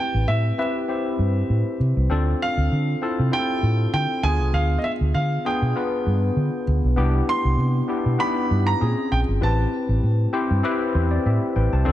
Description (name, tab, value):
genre	polished 1980s jazz-funk pop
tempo	98 BPM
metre	4/4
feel	swing 54% on 16ths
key	A minor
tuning	A4 = 440 Hz
part	warm grand piano	melody	0.0-10.6 s	D#5 to C6	-27 LUFS	right 2 dB	none
part	barky tine electric piano	accompaniment	0.0-11.9 s	B3 to A5	-24 LUFS	left 2 dB	overdrive, analog chorus
part	vintage muted fingered electric bass	bass	0.1-11.9 s	G1 to D3	-20 LUFS	equal	none
room	light reverb, studio reverb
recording	none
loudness	-19 LUFS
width	side -13 dB against mid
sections	0.0-11.9 A section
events	none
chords	0.0 Am9; 2.1 Dm7; 4.2 G7b9; 7.0 Cmaj7; 8.8 Bbm9; 9.4 Am9